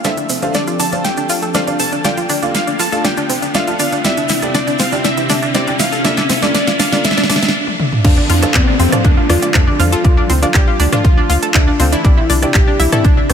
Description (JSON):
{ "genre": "progressive house", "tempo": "120 BPM", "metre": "4/4", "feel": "straight", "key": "unclear", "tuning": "A4 = 440 Hz", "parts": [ { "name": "plucky unison lead", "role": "melody", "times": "0.0-13.3 s", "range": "C4 to A5", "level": "-20 LUFS", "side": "equal", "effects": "sidechain pumping, tape echo" }, { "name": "airy breathy pad", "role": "sustained chords", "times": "0.0-13.3 s", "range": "C3 to A4", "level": "-24 LUFS", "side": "left 1 dB", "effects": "chorus, sidechain pumping" }, { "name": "analog pluck", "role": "arpeggios", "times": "0.0-13.3 s", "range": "C4 to A4", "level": "-20 LUFS", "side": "left 1 dB", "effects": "chorus, cassette tape, sidechain pumping, digital delay" }, { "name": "felt-muted upright piano", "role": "stabs", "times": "0.0-13.0 s", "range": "Bb3 to A5", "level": "-24 LUFS", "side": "equal", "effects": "sidechain pumping, digital delay" }, { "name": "tight sequencer bass", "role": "bass", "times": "0.0-13.3 s", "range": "Bb1 to Bb2", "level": "-18 LUFS", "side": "equal", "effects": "none" }, { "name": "pop drum kit", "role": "drums", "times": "0.0-13.3 s", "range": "crash cymbal, handclaps, hi-hat, rim click, snare drum, toms", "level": "-19 LUFS", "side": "equal", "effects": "sidechain pumping on hats, small room ambience, sidechain pumping on toms, sidechain pumping on cymbals" }, { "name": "tube shaker", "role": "percussion", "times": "0.0-7.5 s", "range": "none", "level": "-27 LUFS", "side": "right 6 dB", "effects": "none" }, { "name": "riser and downlifter", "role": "sound effects", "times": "0.0-12.0 s", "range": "none", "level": "-22 LUFS", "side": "equal", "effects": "none" }, { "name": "glassy wavetable pluck", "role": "second line", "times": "8.0-13.3 s", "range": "C4 to G4", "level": "-26 LUFS", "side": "right 2 dB", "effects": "none" }, { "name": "electronic kick drum", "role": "drums", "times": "8.0-13.1 s", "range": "none", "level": "-12 LUFS", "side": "equal", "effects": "small room ambience" }, { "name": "electronic congas, bongos and toms", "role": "percussion", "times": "8.3-13.0 s", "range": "none", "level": "-22 LUFS", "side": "right 3 dB", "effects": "overdrive, sidechain pumping on perc, small room ambience, sidechain pumping on toms" } ], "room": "light reverb", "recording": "none", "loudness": "-11 LUFS", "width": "side -8 dB against mid", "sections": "0.0-8.0 A section; 8.0-13.3 B section", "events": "build-up 0.0-8.0; riser 0.0-7.5; drum fill 0.0-7.5, 7.7-8.0; stop 7.5-8.0; drop 8.0-13.3", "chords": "0.0 F6; 2.0 Dm; 4.0 Cadd9; 6.0 Bbmaj7; 8.0 F6; 10.0 Dm; 12.0 Cadd9", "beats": "| 0.05 0.55 1.05 1.55 | 2.05 2.55 3.05 3.55 | 4.05 4.55 5.05 5.55 | 6.05 6.55 7.05 7.55 | 8.05 8.55 9.05 9.55 | 10.05 10.55 11.05 11.55 | 12.05 12.55 13.05" }